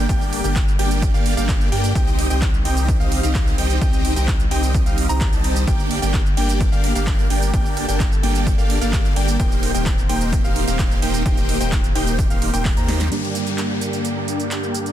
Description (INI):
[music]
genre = EDM, festival progressive house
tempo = 129 BPM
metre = 4/4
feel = straight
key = G minor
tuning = A4 = 440 Hz
[part]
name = lush unison pad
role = sustained chords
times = 0.0-14.9 s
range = D3 to A4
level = -29 LUFS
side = equal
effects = chorus, sidechain pumping
[part]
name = bright baby grand piano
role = arpeggios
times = 0.0-13.1 s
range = F5 to Bb5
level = -31 LUFS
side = equal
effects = sidechain pumping, ping-pong delay
[part]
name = big supersaw lead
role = riff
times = 0.0-14.9 s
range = Bb3 to Bb5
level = -24 LUFS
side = equal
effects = phaser, sidechain pumping, low-pass filter, ping-pong delay
[part]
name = saturated sub bass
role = bass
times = 0.0-13.1 s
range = Eb1 to G2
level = -22 LUFS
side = equal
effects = tube saturation, sidechain pumping
[part]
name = big-room dance drum kit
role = drums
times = 0.1-14.9 s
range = cabasa, handclaps, hi-hat, ride cymbal, snare drum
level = -28 LUFS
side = right 3 dB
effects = overdrive
[part]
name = electronic kick drum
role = drums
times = 0.1-12.7 s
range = none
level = -20 LUFS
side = equal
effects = overdrive
[part]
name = semi-hollow electric guitar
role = accompaniment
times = 13.1-14.9 s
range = G2 to G4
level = -27 LUFS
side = right 3 dB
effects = spring reverb, sidechain pumping, ping-pong delay
[part]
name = downlifter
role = sound effects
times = 13.1-14.9 s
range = none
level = -30 LUFS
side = left 2 dB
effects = none
[sound]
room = digital ambience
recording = dense, heavily limited modern master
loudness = -16 LUFS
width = side -12 dB against mid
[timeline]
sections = 0.0-13.1 A section; 13.1-14.9 B section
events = drop 0.0-13.1; drum fill 12.9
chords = 0.0 Gm; 2.0 Cm; 5.7 Gm; 9.4 Eb6; 13.1 Gm